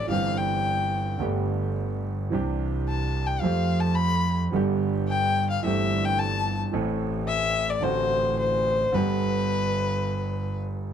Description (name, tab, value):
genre	tango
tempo	108 BPM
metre	4/4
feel	rubato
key	C major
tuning	A4 = 440 Hz
part	warm violin	second line	0.0-10.6 s	B4 to B5	-26 LUFS	left 4 dB	none
part	warm concert grand piano	accompaniment	0.0-10.9 s	G1 to A4	-27 LUFS	right 4 dB	none
part	clear double bass	bass	0.0-10.9 s	G1 to F2	-29 LUFS	equal	none
room	light reverb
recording	none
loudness	-23 LUFS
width	side -8 dB against mid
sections	0.0-10.9 A section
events	violin solo 0.0-10.9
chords	0.1 C/G; 1.2 Gadd9; 2.3 Cadd9; 3.4 Fadd9; 4.5 G; 5.6 C6/G; 6.7 Am; 7.8 D7/A; 8.9 G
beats	| 0.10 0.65 1.21 1.77 | 2.33 2.88 3.44 3.99 | 4.54 5.09 5.64 6.19 | 6.74 7.28 7.83 8.39 | 8.94 9.49 10.05 10.61